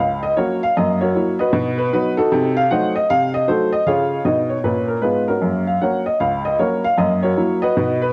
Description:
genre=jazz, stride piano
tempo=154 BPM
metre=4/4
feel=swing 64% on 8ths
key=F# major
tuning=A4 = 440 Hz
part: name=clear upright piano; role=solo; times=0.0-8.1 s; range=C#2 to Gb5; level=-18 LUFS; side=equal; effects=none
room=moderate spring reverb, RT60 1.3 s, studio ambience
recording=worn, warbling old tape, cassette tape, warbly pitch drift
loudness=-18 LUFS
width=mono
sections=0.0-8.1 A section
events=none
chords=0.0 F#; 0.8 F#7; 1.5 B; 2.3 Cdim7; 3.9 C#; 5.4 F#; 7.0 F#7

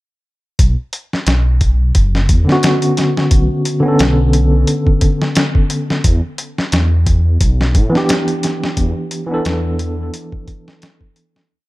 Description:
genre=trip hop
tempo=88 BPM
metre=4/4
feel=swing 56% on 16ths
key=B minor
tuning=A4 = 440 Hz
part: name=dark detuned saw bass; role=bass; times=0.6-10.1 s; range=F#1 to A2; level=-14 LUFS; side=equal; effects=none
part: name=dusty soul sampler-style drum kit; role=drums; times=0.6-11.5 s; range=hi-hat, kick drum, snare drum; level=-15 LUFS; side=equal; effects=studio reverb
part: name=tine electric piano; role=accompaniment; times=2.4-11.5 s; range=D3 to A4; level=-16 LUFS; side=equal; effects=tremolo, tape echo
room=little or no reverb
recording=dark, warm production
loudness=-12 LUFS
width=side -19 dB against mid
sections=0.6-11.5 groove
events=fade-out 7.9-11.5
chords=0.6 Bmadd9; 6.0 Em7

